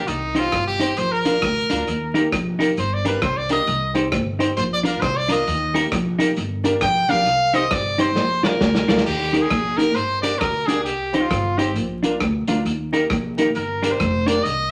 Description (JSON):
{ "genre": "ska", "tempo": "134 BPM", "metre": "4/4", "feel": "swing 62% on 8ths", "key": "Eb major", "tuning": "A4 = 441 Hz", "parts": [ { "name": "brilliant trumpet", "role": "melody", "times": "0.0-14.7 s", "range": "Eb4 to G5", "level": "-24 LUFS", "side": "equal", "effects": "none" }, { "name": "upright bass", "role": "bass", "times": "0.0-14.7 s", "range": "F1 to Eb2", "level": "-28 LUFS", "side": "equal", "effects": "none" }, { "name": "vintage drum kit", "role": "drums", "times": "0.1-14.6 s", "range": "crash cymbal, hi-hat, kick drum, rim click, snare drum", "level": "-28 LUFS", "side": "equal", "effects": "dub echo" }, { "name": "semi-hollow electric guitar", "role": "accompaniment", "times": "0.3-14.4 s", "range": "D4 to D5", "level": "-26 LUFS", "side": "equal", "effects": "none" }, { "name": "warm upright piano", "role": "stabs", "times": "0.3-14.4 s", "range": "Bb3 to C5", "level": "-29 LUFS", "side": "equal", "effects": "none" } ], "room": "wet studio reverb, RT60 0.7 s", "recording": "vinyl crackle", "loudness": "-20 LUFS", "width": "mono", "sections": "0.0-9.1 A section; 9.1-14.7 A section", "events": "trumpet solo 0.0-9.1, 9.1-14.7; drum fill 8.2-9.1", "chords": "0.1 Cm; 1.0 Bb; 1.9 Eb; 2.8 Gm; 3.7 Cm; 4.6 Bb; 5.5 Eb; 6.4 Gm; 7.3 Cm; 8.2 Bb; 9.1 Eb; 10.0 Gm; 10.9 Cm; 11.8 Bb; 12.7 Eb; 13.6 Gm", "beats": "| 0.08 0.53 0.97 1.42 | 1.87 2.32 2.77 3.22 | 3.67 4.12 4.57 5.02 | 5.46 5.91 6.36 6.81 | 7.26 7.71 8.16 8.61 | 9.06 9.51 9.96 10.41 | 10.86 11.30 11.75 12.20 | 12.65 13.10 13.55 14.00 | 14.45" }